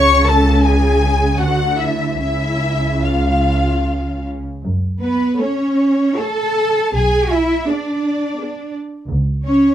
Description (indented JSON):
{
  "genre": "classical, slow romantic movement for string orchestra",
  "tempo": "71-87 BPM",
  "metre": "3/4",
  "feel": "rubato",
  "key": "F# minor",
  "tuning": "A4 = 440 Hz",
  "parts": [
    { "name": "rich studio violin section", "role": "melody", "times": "0.0-9.7 s", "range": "B4 to C#6", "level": "-22 LUFS", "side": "left 4 dB", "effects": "none" },
    { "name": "rich studio violin section", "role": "second line", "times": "0.0-9.7 s", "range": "B4 to C#6", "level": "-26 LUFS", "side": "left 2 dB", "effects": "none" },
    { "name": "warm studio viola section", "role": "accompaniment", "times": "0.0-8.9 s", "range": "A3 to C#5", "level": "-22 LUFS", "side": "equal", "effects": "none" },
    { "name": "rich symphonic double bass section", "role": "bass", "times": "0.0-9.7 s", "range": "B1 to F#2", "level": "-18 LUFS", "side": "right 1 dB", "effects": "none" },
    { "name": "warm studio cello section", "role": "bass", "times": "0.0-9.7 s", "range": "C#3 to A4", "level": "-18 LUFS", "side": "right 1 dB", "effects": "none" }
  ],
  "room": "little or no reverb",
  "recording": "close, detailed microphones",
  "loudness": "-15 LUFS",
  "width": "side -11 dB against mid",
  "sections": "0.0-4.6 A section; 4.6-9.7 B section",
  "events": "none",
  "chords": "0.0 C#5; 1.4 Dadd9; 2.2 C#; 4.6 F#m; 6.9 G#dim/B; 9.1 N.C."
}